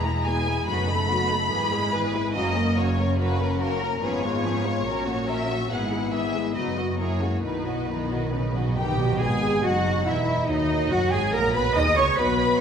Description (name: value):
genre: classical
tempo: 142 BPM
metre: 4/4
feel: rubato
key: B major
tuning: A4 = 436 Hz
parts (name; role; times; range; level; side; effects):
- warm symphonic violin section; melody; 0.0-12.6 s; A#4 to D#6; -29 LUFS; left 2 dB; none
- warm symphonic violin section; second line; 0.0-12.6 s; A#3 to D#6; -32 LUFS; left 1 dB; none
- dark symphonic viola section; accompaniment; 0.0-12.6 s; D#3 to D#5; -31 LUFS; right 1 dB; none
- mellow French horn section; sustained chords; 0.0-12.6 s; D#3 to F#4; -30 LUFS; left 4 dB; none
- rich symphonic cello section; bass; 0.0-12.6 s; E2 to D#5; -28 LUFS; right 2 dB; none
- rich symphonic double bass section; bass; 0.0-12.6 s; E1 to D#2; -29 LUFS; right 2 dB; none
- timpani; percussion; 7.4-9.2 s; B2; -30 LUFS; right 1 dB; none
- mellow clarinet; second line; 8.8-12.6 s; D#4 to D#5; -31 LUFS; left 1 dB; none
- clear bassoon; accompaniment; 9.2-12.6 s; F#3 to D#4; -30 LUFS; right 2 dB; none
room: wet concert hall reverb, RT60 2.2 s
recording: minimal, uncompressed stereo recording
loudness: -22 LUFS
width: side -7 dB against mid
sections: 0.0-9.2 A section; 9.2-12.6 A section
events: timpani fill 7.4-9.2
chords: 0.0 E; 0.7 B7/F#; 1.5 E/G#; 2.4 F#; 4.0 C#7/G#; 4.9 F#/A#; 5.7 E/G#; 6.6 B/F#; 7.0 F#9; 7.4 B; 10.9 F#; 11.8 B